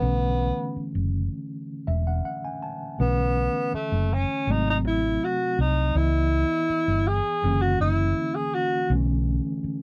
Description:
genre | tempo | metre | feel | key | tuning
lush 1970s-style soul | 81 BPM | 4/4 | straight | B dorian | A4 = 436 Hz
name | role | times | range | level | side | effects
breathy alto saxophone | melody | 0.0-8.9 s | A3 to G#4 | -27 LUFS | equal | none
tine electric piano | accompaniment | 0.0-9.8 s | B#2 to A5 | -32 LUFS | equal | none
hollow-body short-scale fingered electric bass | bass | 0.0-9.7 s | E1 to C#2 | -26 LUFS | equal | none
room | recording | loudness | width
little or no reverb | dry, close 1970s-style studio recording | -25 LUFS | mono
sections
0.0-3.0 A section; 3.0-9.8 B section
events
tine electric piano fill 1.5-3.0; alto saxophone solo 3.0-9.8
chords
0.0 Bm11; 4.5 G#7b9; 5.9 C#m7b5; 7.4 F#7b13; 8.9 Bm11

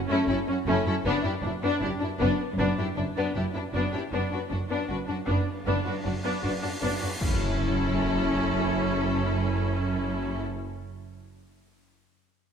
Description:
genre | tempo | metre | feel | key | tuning
cinematic, suspense film score | 78 BPM | 4/4 | straight | F# minor | A4 = 439 Hz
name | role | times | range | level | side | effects
rich symphonic cello section | riff | 0.0-7.1 s | F#2 to F#3 | -36 LUFS | right 1 dB | none
warm symphonic violin section | melody | 0.1-10.4 s | D4 to B4 | -34 LUFS | left 6 dB | none
rich symphonic violin section | second line | 0.1-10.4 s | A3 to F#4 | -32 LUFS | left 4 dB | none
clear symphonic viola section | accompaniment | 0.1-10.4 s | C#4 to D4 | -30 LUFS | equal | none
rich studio cello section | bass | 0.1-10.4 s | F#2 | -32 LUFS | right 3 dB | none
rich symphonic double bass section | bass | 0.3-10.4 s | F#1 | -33 LUFS | right 3 dB | none
cymbal swell and impact | sound effects | 6.0-10.4 s | none | -34 LUFS | left 1 dB | none
room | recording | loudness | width
moderate concert hall reverb, RT60 2.0 s | none | -25 LUFS | side -7 dB against mid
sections
0.0-7.2 A section; 7.2-10.3 B section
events
cymbal swell 6.0-7.2; impact 7.2-10.3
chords
0.0 F#m7; 1.1 E7(no3)/F#; 7.2 F#m7

